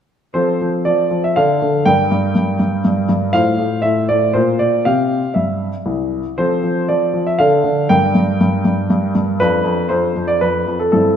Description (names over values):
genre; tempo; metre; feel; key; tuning
classical-period piano sonatina; 119 BPM; 3/4; straight; F major; A4 = 440 Hz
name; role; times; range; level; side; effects
clear grand piano; solo; 0.3-11.2 s; C2 to G5; -14 LUFS; equal; none
room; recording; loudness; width
moderate recital hall reverb, RT60 1.8 s; minimal, uncompressed stereo recording; -14 LUFS; side -8 dB against mid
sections
0.4-11.2 A section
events
none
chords
0.4 F; 1.4 Dm; 1.9 Gm; 3.3 F/A; 4.3 Bb; 4.8 C; 6.4 F; 7.4 Dm; 7.9 Gm; 9.4 Dm/F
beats
| 0.35 0.86 1.36 | 1.86 2.35 2.84 | 3.34 3.84 4.34 | 4.85 5.36 5.87 | 6.38 6.89 7.39 | 7.90 8.40 8.90 | 9.40 9.90 10.41 | 10.92